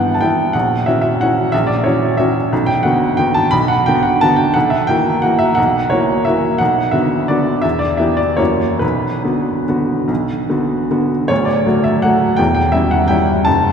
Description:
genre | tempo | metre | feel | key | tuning
classical, piano waltz | 136-192 BPM | 3/4 | rubato | B minor | A4 = 440 Hz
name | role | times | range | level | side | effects
clear upright piano | solo | 0.0-13.7 s | D1 to B5 | -13 LUFS | equal | none
room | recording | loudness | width
wet church reverb, RT60 3.5 s | heard from further back in the room | -13 LUFS | side -7 dB against mid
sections
0.0-11.3 A section; 11.3-13.7 B section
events
none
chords
0.0 Em/G; 0.5 F#7/A#; 2.5 Bm; 4.5 F#7/B; 6.6 Bm; 7.6 Em; 8.4 F#7; 8.8 Bm; 11.3 D; 12.4 C#dim/E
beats
0.21 | 0.54 0.86 1.20 | 1.52 1.84 2.18 | 2.51 2.84 3.18 | 3.52 3.86 4.21 | 4.55 4.88 5.23 | 5.57 5.91 6.26 | 6.60 6.94 7.30 | 7.64 8.00 8.39 | 8.82 9.26 9.68 | 10.09 10.49 10.91 | 11.30 11.66 12.03 | 12.39 12.74 13.10 | 13.46

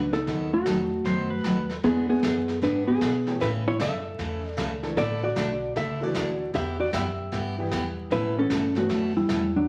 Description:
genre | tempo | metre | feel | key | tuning
country, western swing | 153 BPM | 4/4 | swing 64% on 8ths | unclear | A4 = 443 Hz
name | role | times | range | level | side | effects
hollow-body jazz guitar | melody | 0.0-9.7 s | F#3 to E5 | -28 LUFS | equal | none
upright bass | bass | 0.0-9.7 s | A1 to B2 | -36 LUFS | equal | none
vintage brush drum kit | drums | 0.1-9.7 s | brushed snare drum, hi-hat, snare drum | -39 LUFS | equal | none
picked steel-string acoustic guitar | accompaniment | 0.3-9.4 s | B2 to A4 | -34 LUFS | equal | none
clear upright piano | accompaniment | 0.7-8.9 s | E3 to A4 | -37 LUFS | equal | none
pedal steel guitar | second line | 1.1-1.8 s | B4 to C5 | -36 LUFS | equal | none
room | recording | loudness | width
moderate large studio reverb, RT60 0.9 s | vinyl crackle | -26 LUFS | mono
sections
0.0-9.7 A section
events
none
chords
0.3 B7/D#; 1.8 E7; 3.4 A; 5.0 Asus4; 6.5 Em; 8.1 Aadd9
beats
| 0.27 0.66 1.06 1.45 | 1.84 2.23 2.62 3.01 | 3.41 3.80 4.19 4.58 | 4.97 5.37 5.76 6.15 | 6.54 6.93 7.33 7.72 | 8.11 8.50 8.89 9.29 | 9.68

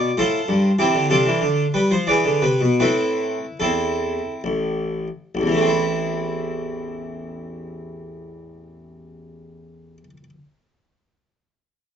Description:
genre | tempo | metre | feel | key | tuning
classical, baroque-style suite movement for harpsichord | 64-101 BPM | 3/4 | rubato | A minor | A4 = 439 Hz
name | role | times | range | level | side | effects
harpsichord | solo | 0.0-10.3 s | A1 to D5 | -19 LUFS | equal | none
room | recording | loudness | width
moderate studio reverb, RT60 0.5 s | dark, warm production, nothing above 7.8 kHz | -18 LUFS | side -8 dB against mid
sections
0.0-5.3 A section; 5.3-10.8 B section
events
slowing down 0.0-5.3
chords
0.2 F/A; 0.8 C; 1.4 Dm; 2.1 E7; 2.8 Am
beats
0.18 | 0.78 1.41 2.08 | 2.81 3.61 4.44 | 5.34 6.25 7.16 | 8.06 8.98 9.90

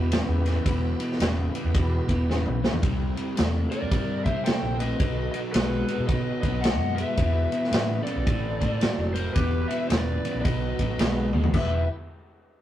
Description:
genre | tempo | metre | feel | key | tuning
blues rock power trio and southern rock | 110 BPM | 4/4 | swing 63% on 8ths | E minor | A4 = 440 Hz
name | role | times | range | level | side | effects
tonewheel organ | sustained chords | 0.0-12.0 s | B3 to C5 | -38 LUFS | right 2 dB | overdrive, chorus vibrato, slow rotary speaker
crunchy overdriven guitar | riff | 0.0-11.8 s | E2 to G4 | -30 LUFS | equal | spring reverb
vintage muted fingered electric bass | bass | 0.0-11.9 s | E1 to C3 | -27 LUFS | equal | none
vintage drum kit | drums | 0.1-11.7 s | crash cymbal, kick drum, ride cymbal, snare drum, toms | -27 LUFS | equal | none
lead guitar through a small cranked amp | melody | 3.7-11.9 s | B4 to G5 | -32 LUFS | left 3 dB | overdrive
smooth overdriven lead guitar | second line | 3.7-11.9 s | G4 to D#5 | -37 LUFS | right 3 dB | none
room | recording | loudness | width
light reverb | rough rehearsal-room recording | -23 LUFS | side -12 dB against mid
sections
0.0-11.5 A section; 11.5-12.6 B section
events
drum fill 2.3-2.8, 11.3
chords
0.0 Em; 2.8 C7; 5.0 B7; 7.2 Em; 8.3 Am; 9.4 Em; 10.4 B7; 11.5 Em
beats
0.11 | 0.66 1.20 1.74 2.28 | 2.83 3.37 3.91 4.46 | 5.00 5.54 6.09 6.63 | 7.18 7.72 8.27 8.81 | 9.36 9.90 10.45 10.99 | 11.54

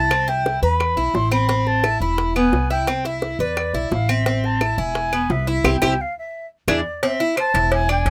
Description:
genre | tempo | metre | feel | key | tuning
latin, Cuban son and guajira | 173 BPM | 4/4 | straight | A harmonic minor | A4 = 440 Hz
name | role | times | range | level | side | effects
mellow silver concert flute | melody | 0.0-8.1 s | D5 to C6 | -25 LUFS | equal | none
Cuban tres | arpeggios | 0.0-8.1 s | B3 to C5 | -25 LUFS | equal | none
upright bass | bass | 0.0-8.1 s | E1 to E2 | -25 LUFS | equal | none
bongos and cowbell | percussion | 0.1-8.1 s | none | -28 LUFS | equal | none
claves | percussion | 0.1-8.1 s | none | -28 LUFS | equal | none
room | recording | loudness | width
light reverb | close, detailed microphones | -20 LUFS | mono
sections
0.0-7.0 A section; 7.0-8.1 B section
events
drum fill 5.6-7.0; band accent 5.6-7.0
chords
0.1 C; 0.8 E5; 1.5 Am; 2.2 E; 2.9 C; 3.6 E5; 4.3 Am; 5.0 E; 5.6 C; 6.3 E7; 7.0 Am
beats
| 0.11 0.45 0.80 1.15 | 1.49 1.84 2.19 2.53 | 2.88 3.22 3.57 3.92 | 4.26 4.61 4.95 5.30 | 5.65 5.99 6.34 6.68 | 7.03 7.37 7.72 8.06

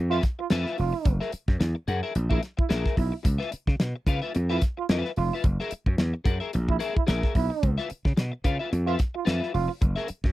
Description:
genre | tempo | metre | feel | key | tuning
funk | 110 BPM | 4/4 | swing 56% on 16ths | unclear | A4 = 440 Hz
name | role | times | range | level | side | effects
gritty slap bass | bass | 0.0-10.3 s | F1 to Db3 | -26 LUFS | equal | overdrive
breathy trombone | second line | 0.1-9.7 s | Fb4 to F4 | -29 LUFS | right 9 dB | none
electric guitar at the edge of break-up | accompaniment | 0.1-10.3 s | F4 to Gb5 | -31 LUFS | left 4 dB | analog chorus
damped 70s drum kit | drums | 0.2-10.3 s | hi-hat, kick drum, snare drum | -25 LUFS | equal | none
room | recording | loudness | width
little or no reverb | dry, close 1970s-style studio recording | -24 LUFS | side -16 dB against mid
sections
0.0-10.3 A section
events
none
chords
0.0 Db7#9 (rootless); 1.1 Gb9; 3.2 Db7#9; 5.4 Gb9; 7.6 Db7#9; 9.8 Gb9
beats
0.51 | 1.06 1.60 2.15 2.70 | 3.25 3.79 4.34 4.89 | 5.44 5.98 6.53 7.08 | 7.63 8.17 8.72 9.27 | 9.82

